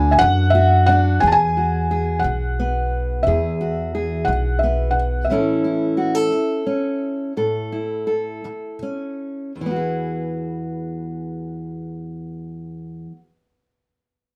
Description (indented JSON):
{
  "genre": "acoustic folk duo or small band",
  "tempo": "53-59 BPM (dotted quarters)",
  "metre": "6/8",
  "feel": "straight",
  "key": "E mixolydian",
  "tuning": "A4 = 439 Hz",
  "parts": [
    { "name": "felt-muted upright piano", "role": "melody", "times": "0.0-8.7 s", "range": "E5 to A5", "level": "-22 LUFS", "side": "equal", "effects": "none" },
    { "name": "fingerpicked steel-string acoustic guitar", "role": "accompaniment", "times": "0.0-13.3 s", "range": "E2 to A4", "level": "-25 LUFS", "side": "equal", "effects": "none" },
    { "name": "upright bass", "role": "bass", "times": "0.0-5.3 s", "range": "B1 to F#2", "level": "-22 LUFS", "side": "equal", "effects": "none" }
  ],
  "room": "moderate studio reverb, RT60 0.5 s",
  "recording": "band playing live in one room",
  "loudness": "-20 LUFS",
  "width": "mono",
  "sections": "0.0-1.2 A section; 1.2-9.6 B section; 9.6-14.1 C section",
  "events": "slowing down 5.3-9.6",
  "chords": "0.0 Bm/D (rootless); 1.2 Eadd9; 5.3 A; 9.6 Eadd9",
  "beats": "0.21 | 1.23 2.24 | 3.26 4.28 | 5.29 6.32 | 7.36 8.44 | 9.55 10.69 | 11.83 12.97"
}